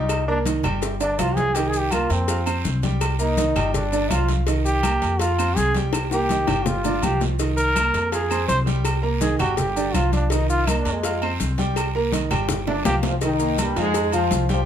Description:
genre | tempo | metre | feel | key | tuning
latin, salsa | 165 BPM | 4/4 | straight | C minor | A4 = 440 Hz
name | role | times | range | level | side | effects
bright trombone | melody | 0.0-13.0 s | Ab3 to C5 | -24 LUFS | equal | plate reverb
clear concert grand piano | accompaniment | 0.0-14.7 s | D3 to F6 | -26 LUFS | right 4 dB | none
upright bass | bass | 0.0-14.7 s | G1 to F2 | -24 LUFS | equal | none
agogo bells and timbales | percussion | 0.1-14.5 s | none | -31 LUFS | right 5 dB | none
claves | percussion | 0.1-13.0 s | none | -35 LUFS | left 2 dB | none
congas | percussion | 0.1-14.7 s | none | -29 LUFS | left 4 dB | none
cowbell and bongos | percussion | 0.1-14.7 s | none | -31 LUFS | left 5 dB | none
maracas | percussion | 0.1-14.7 s | none | -35 LUFS | left 8 dB | none
guiro | percussion | 1.6-14.7 s | none | -38 LUFS | right 7 dB | none
mellow trombone section | melody | 13.1-14.6 s | G2 to F4 | -22 LUFS | left 2 dB | plate reverb
room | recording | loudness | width
moderate studio reverb, RT60 0.6 s | none | -19 LUFS | side -9 dB against mid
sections
0.0-13.2 A section; 13.2-14.7 B section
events
trombone solo 0.0-13.2; drum fill 0.8-1.6, 5.9-7.4, 12.5-13.2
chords
0.1 Cm7; 0.8 G5; 1.6 Cm7; 2.3 F5; 3.0 Cm7; 3.7 G5; 4.5 Cm7; 5.2 F5; 5.9 Cm7; 6.7 G5; 7.4 Cm7; 8.1 Fm; 8.9 Cm7; 9.6 G5; 10.3 Cm7; 11.0 F5; 11.8 Cm7; 12.5 G5; 13.2 Cm7; 13.9 Fm

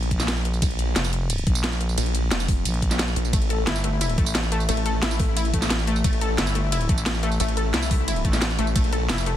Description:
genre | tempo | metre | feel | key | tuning
dark technical drum and bass | 177 BPM | 4/4 | straight | A phrygian | A4 = 440 Hz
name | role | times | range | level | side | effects
snarling distorted saw bass | bass | 0.0-9.1 s | F1 to C2 | -24 LUFS | equal | distortion, overdrive, sidechain pumping
drum and bass drum kit | drums | 0.0-9.3 s | hi-hat, ride cymbal, snare drum, tambourine | -26 LUFS | right 1 dB | none
growling FM bass | bass | 0.1-9.4 s | F1 to Bb1 | -25 LUFS | equal | none
electronic kick drum | drums | 0.1-8.8 s | none | -23 LUFS | equal | none
analog pluck | arpeggios | 3.3-9.4 s | A3 to A4 | -28 LUFS | left 4 dB | chorus, sidechain pumping, ping-pong delay
room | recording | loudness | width
light reverb | dense, heavily limited modern master | -20 LUFS | side -11 dB against mid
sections
0.0-9.4 A section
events
none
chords
0.0 Bb5; 3.3 A5; 8.8 Bb5

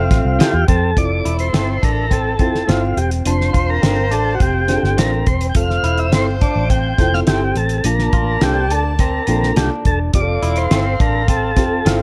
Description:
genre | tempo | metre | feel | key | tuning
uptempo 1960s-style soul | 105 BPM | 4/4 | straight | F major | A4 = 439 Hz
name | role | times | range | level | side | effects
tonewheel organ | melody | 0.0-12.0 s | F4 to G5 | -23 LUFS | equal | slow rotary speaker
clear horn section | second line | 0.0-12.0 s | F3 to A5 | -30 LUFS | equal | slapback echo
reed electric piano | accompaniment | 0.0-12.0 s | Bb3 to A5 | -26 LUFS | equal | overdrive, medium tremolo
electric guitar through a small old amp | riff | 0.0-12.0 s | C4 to F4 | -27 LUFS | equal | none
vintage muted fingered electric bass | bass | 0.0-12.0 s | E1 to F2 | -22 LUFS | equal | none
cloth-damped thuddy drum kit | drums | 0.1-12.0 s | hi-hat, kick drum, snare drum | -20 LUFS | equal | none
electric guitar through a small old amp | stabs | 0.4-12.0 s | A3 to D5 | -28 LUFS | equal | none
room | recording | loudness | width
studio ambience | none | -16 LUFS | mono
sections
1.0-12.0 A section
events
none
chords
0.0 Fmaj7; 3.3 Dm7; 5.6 Fmaj7; 7.8 Bbmaj7; 10.1 Fmaj7

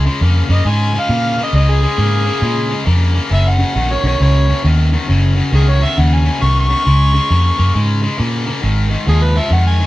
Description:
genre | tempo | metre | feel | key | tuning
electric blues shuffle | 135 BPM | 4/4 | swing 64% on 8ths | Db major | A4 = 440 Hz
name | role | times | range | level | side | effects
overdriven electric guitar | riff | 0.0-9.9 s | Gb2 to Bb3 | -19 LUFS | left 2 dB | none
vintage muted fingered electric bass | bass | 0.0-9.8 s | Gb1 to Bb2 | -13 LUFS | equal | none
overdriven harmonica | melody | 0.5-9.9 s | Ab4 to Db6 | -18 LUFS | equal | none
room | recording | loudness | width
light reverb | band playing live in one room | -12 LUFS | side -16 dB against mid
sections
0.0-9.9 A section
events
none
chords
0.0 Db; 3.3 Gb5; 6.9 Db5; 8.6 Ab5

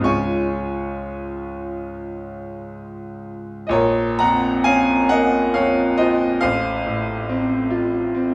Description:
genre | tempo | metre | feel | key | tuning
classical, romantic nocturne for solo piano | 47-71 BPM | 3/4 | rubato | Db major, Bb minor from 3.7 s | A4 = 440 Hz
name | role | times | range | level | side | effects
bright grand piano | solo | 0.0-8.3 s | A1 to Db6 | -21 LUFS | equal | none
room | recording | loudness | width
wet recital hall reverb, RT60 1.6 s | small room reverb | -20 LUFS | mono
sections
0.0-3.7 A section; 3.7-8.3 B section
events
none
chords
0.0 Db; 3.7 Bbm; 6.4 F/A

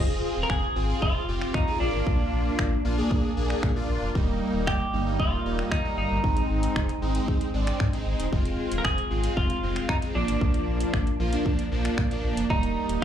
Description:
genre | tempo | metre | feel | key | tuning
dance-pop | 115 BPM | 4/4 | straight | unclear | A4 = 440 Hz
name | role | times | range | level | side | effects
big bright polysynth | accompaniment | 0.0-13.0 s | F3 to Ab4 | -28 LUFS | right 1 dB | lush chorus, sidechain pumping, slapback echo
sub bass with octave | bass | 0.0-13.0 s | Eb1 to Bb2 | -29 LUFS | equal | sidechain pumping
twelve-string electric guitar | melody | 0.4-13.0 s | D4 to Bb4 | -30 LUFS | equal | slapback echo, ping-pong delay
pop drum kit | drums | 0.5-13.0 s | finger snaps, hi-hat, kick drum | -27 LUFS | equal | none
room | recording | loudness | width
little or no reverb | live gig heard through the venue's PA, club reverb, faint mains hum | -23 LUFS | side -10 dB against mid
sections
0.0-13.0 A section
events
none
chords
0.0 Fm; 1.8 Bb; 4.2 Eb; 6.2 Ab; 8.3 Fm; 10.2 Bb; 12.5 Eb

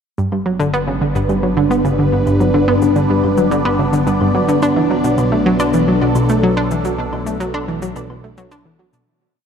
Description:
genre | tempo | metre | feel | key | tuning
ambient, sequencer-driven space music | 108 BPM | 4/4 | straight | G major | A4 = 440 Hz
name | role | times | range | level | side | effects
phased analog pad | sustained chords | 0.2-9.1 s | F#3 to D5 | -17 LUFS | equal | phaser, chorus, shimmer reverb
analog pluck | riff | 0.2-9.0 s | G2 to D4 | -16 LUFS | equal | chorus, tape echo
fat analog bass | bass | 0.2-9.0 s | G1 to B1 | -24 LUFS | equal | none
cabasa and woodblock | percussion | 0.2-9.0 s | none | -34 LUFS | left 2 dB | tape echo
room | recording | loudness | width
wet cathedral reverb, RT60 7.1 s | in a vast, echoing space | -13 LUFS | side -7 dB against mid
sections
0.2-9.1 A section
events
fade-in on drum 0.2-9.1; fade-out 6.1-9.1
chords
0.2 G; 4.6 Bm7

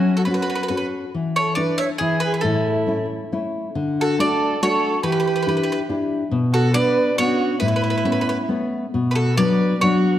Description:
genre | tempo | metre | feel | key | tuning
italian folk, Italian serenade | 138 BPM | 3/4 | rubato | A major, D major from 3.8 s | A4 = 441 Hz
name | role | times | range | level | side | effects
bowl-back mandolin | melody | 0.0-10.2 s | F#4 to E5 | -24 LUFS | equal | none
dark violin | second line | 0.0-10.2 s | C#4 to C#5 | -24 LUFS | right 4 dB | none
nylon-string guitar | accompaniment | 0.0-10.2 s | A2 to A4 | -20 LUFS | left 2 dB | none
room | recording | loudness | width
wet scoring stage reverb, RT60 1.5 s | dark, warm production | -18 LUFS | side -12 dB against mid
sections
0.0-3.8 A section; 3.8-10.2 B section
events
none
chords
0.0 F#m; 1.1 E7sus4; 2.0 N.C.; 2.4 A; 3.8 D; 5.0 Em7; 6.3 Bmadd9; 7.6 Aadd9; 8.9 Bm

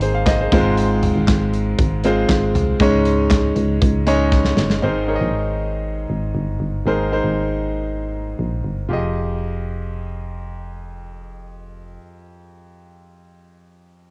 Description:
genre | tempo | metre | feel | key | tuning
piano-driven pop | 118 BPM | 4/4 | straight | F minor | A4 = 440 Hz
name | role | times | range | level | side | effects
clear concert grand piano | accompaniment | 0.0-14.1 s | F2 to F5 | -22 LUFS | equal | cassette tape
solid FM bass | bass | 0.0-12.0 s | F1 to Db2 | -25 LUFS | equal | none
modern studio drum kit | drums | 0.0-4.8 s | handclaps, hi-hat, kick drum, snare drum, toms | -21 LUFS | equal | cassette tape
room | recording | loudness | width
light reverb | home recording on cassette | -19 LUFS | mono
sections
0.0-4.8 A section; 4.8-8.9 B section; 8.9-13.0 C section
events
drum fill 4.3-4.8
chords
0.0 Abadd9; 0.5 Fm/Ab; 2.8 Dbsus2; 4.8 Abadd9; 8.9 Fm9

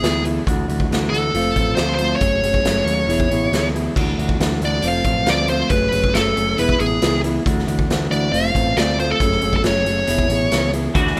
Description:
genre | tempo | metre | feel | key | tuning
indie rock | 137 BPM | 4/4 | straight | D lydian | A4 = 439 Hz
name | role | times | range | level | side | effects
smooth overdriven lead guitar | melody | 0.0-10.7 s | G#4 to F5 | -22 LUFS | equal | none
mellow electric guitar | riff | 0.0-11.2 s | E3 to G#4 | -24 LUFS | equal | none
growling picked electric bass | bass | 0.0-11.2 s | E1 to Eb2 | -26 LUFS | equal | overdrive
raw garage drum kit | drums | 0.0-11.2 s | crash cymbal, hi-hat, kick drum, snare drum | -24 LUFS | equal | none
twangy electric guitar | riff | 10.9-11.2 s | E3 to F#4 | -22 LUFS | equal | ensemble chorus
room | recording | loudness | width
studio ambience | rough home demo mix | -18 LUFS | mono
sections
0.0-4.0 A section; 4.0-11.2 A section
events
none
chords
0.5 Dadd9; 1.3 F; 2.2 F#madd9; 3.1 E; 4.0 Dadd9; 4.8 F; 5.7 F#madd9; 6.6 E; 7.5 Dadd9; 8.3 F; 9.2 F#madd9; 10.1 E

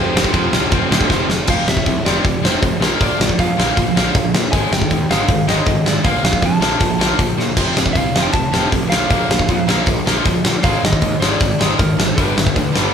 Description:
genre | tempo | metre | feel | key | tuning
punk rock | 157 BPM | 4/4 | straight | unclear | A4 = 440 Hz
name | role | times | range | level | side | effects
lightly driven lead guitar | melody | 0.0-12.9 s | Bb4 to A5 | -24 LUFS | right 2 dB | none
sludgy distorted guitar | riff | 0.0-1.5 s | F2 to C4 | -25 LUFS | right 2 dB | none
tight distorted guitar | riff | 0.0-12.9 s | F2 to Bb3 | -21 LUFS | left 6 dB | distortion
tight distorted guitar | riff | 0.0-12.9 s | F2 to Bb3 | -23 LUFS | right 8 dB | distortion
fuzz picked electric bass | bass | 0.0-12.9 s | F1 to Bb2 | -23 LUFS | equal | overdrive
big rock drum kit | drums | 0.2-12.8 s | crash cymbal, hi-hat, kick drum, ride cymbal, snare drum, splash cymbal | -16 LUFS | equal | none
room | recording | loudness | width
light reverb | band playing live in one room | -13 LUFS | side -7 dB against mid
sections
0.0-1.5 A section; 1.5-12.9 B section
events
drum fill 1.1-1.5, 7.4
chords
0.0 F; 1.5 F5; 2.8 Bb5; 4.5 Ab5; 6.0 Bb5; 7.6 F; 8.9 Bb5; 10.6 Ab5; 12.2 G

